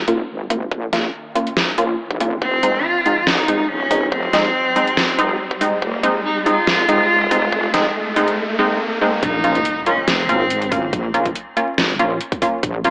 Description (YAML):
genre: deep dubstep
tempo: 141 BPM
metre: 4/4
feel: swing 53% on 16ths, half-time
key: Bb minor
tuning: A4 = 436 Hz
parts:
  - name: wobble bass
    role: bass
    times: 0.0-12.9 s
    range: Eb1 to C2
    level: -24 LUFS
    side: equal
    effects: chorus, tube saturation, high-pass filter
  - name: riser and impact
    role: sound effects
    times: 0.5-10.9 s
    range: none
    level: -27 LUFS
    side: equal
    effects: none
  - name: filtered dub chord stab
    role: stabs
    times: 0.1-12.9 s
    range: Ab3 to F4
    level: -19 LUFS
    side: equal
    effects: chorus, dub echo
  - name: dubstep drum kit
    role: drums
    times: 0.1-12.9 s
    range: hi-hat, snare drum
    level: -20 LUFS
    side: equal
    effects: overdrive
  - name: electronic kick drum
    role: drums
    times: 0.5-12.7 s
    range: none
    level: -24 LUFS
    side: equal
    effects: overdrive, high-pass filter on kick, high-pass filter on room
  - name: rich cello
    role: melody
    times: 2.4-11.4 s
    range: Bb3 to F4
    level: -19 LUFS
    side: equal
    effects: dub echo
room: wet spring reverb, RT60 1.8 s, digital ambience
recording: echo-heavy mix, vinyl crackle, AM radio sound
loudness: -15 LUFS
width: side -29 dB against mid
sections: 0.0-9.2 A section; 9.2-12.9 B section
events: build-up 0.0-9.2; filter sweep on synth stab 0.0-9.2; riser 0.5-9.2; drop 9.2-12.9; impact 9.2-10.9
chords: 0.0 Bbm; 2.4 Fm7; 9.2 Bbm